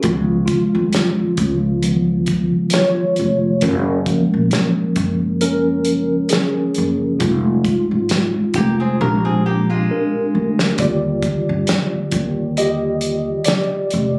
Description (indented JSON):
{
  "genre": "R&B, neo-soul",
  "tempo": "67 BPM",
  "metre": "4/4",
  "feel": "swing 54% on 16ths",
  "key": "unclear",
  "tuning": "A4 = 440 Hz",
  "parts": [
    { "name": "mellow tine electric piano", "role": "accompaniment", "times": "0.0-14.2 s", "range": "D3 to Eb5", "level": "-20 LUFS", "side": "equal", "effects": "none" },
    { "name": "warm soul drum kit", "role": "drums", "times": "0.0-14.1 s", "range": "hi-hat, kick drum, snare drum", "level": "-23 LUFS", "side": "equal", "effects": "none" },
    { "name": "upright bass", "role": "bass", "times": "0.1-14.2 s", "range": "F1 to G2", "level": "-23 LUFS", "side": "equal", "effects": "none" },
    { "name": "flamenco guitar", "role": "second line", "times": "8.6-10.8 s", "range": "Ab3 to Bb4", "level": "-26 LUFS", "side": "equal", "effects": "none" }
  ],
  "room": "light reverb",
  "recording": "recorded on a phone in the room, club reverb",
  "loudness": "-18 LUFS",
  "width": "mono",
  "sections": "0.0-14.2 A section",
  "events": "tine electric piano solo 0.0-14.2; drum fill 9.0-10.8",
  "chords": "0.0 Db9; 3.6 Gbmaj7; 7.2 Fm9; 9.0 Bb13; 10.8 Ebmaj7"
}